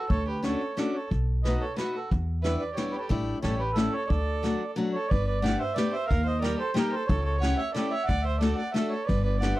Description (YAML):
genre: musette waltz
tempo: 180 BPM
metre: 3/4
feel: swing 54% on 8ths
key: D major, G major from 5.1 s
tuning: A4 = 441 Hz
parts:
  - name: mellow accordion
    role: melody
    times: 0.0-9.6 s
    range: A4 to F#5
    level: -32 LUFS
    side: right 2 dB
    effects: none
  - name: rich violin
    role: second line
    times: 0.0-9.6 s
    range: E4 to D5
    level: -35 LUFS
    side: right 3 dB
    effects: none
  - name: upright bass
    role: bass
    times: 0.1-9.5 s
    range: G1 to E2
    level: -28 LUFS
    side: equal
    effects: tube saturation
  - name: vintage brush drum kit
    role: drums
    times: 0.1-9.5 s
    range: hi-hat, kick drum, ride cymbal, snare drum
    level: -30 LUFS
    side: equal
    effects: none
  - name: picked steel-string acoustic guitar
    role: accompaniment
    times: 0.4-9.6 s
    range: F#3 to A4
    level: -29 LUFS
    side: left 2 dB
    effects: none
room: small room ambience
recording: dry, close 1970s-style studio recording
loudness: -25 LUFS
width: side -16 dB against mid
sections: 0.0-5.1 A section; 5.1-9.6 B section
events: none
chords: 0.1 Dmaj7; 1.1 B7; 2.1 Em7; 3.1 A7sus4; 3.4 A7; 4.1 D; 5.1 Gadd9; 6.1 Eb; 7.1 A7/C#; 8.1 D; 9.1 Gadd9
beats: | 0.10 0.43 0.77 | 1.11 1.44 1.78 | 2.11 2.44 2.77 | 3.10 3.43 3.77 | 4.10 4.43 4.77 | 5.11 5.45 5.78 | 6.11 6.44 6.76 | 7.09 7.42 7.75 | 8.09 8.42 8.76 | 9.09 9.43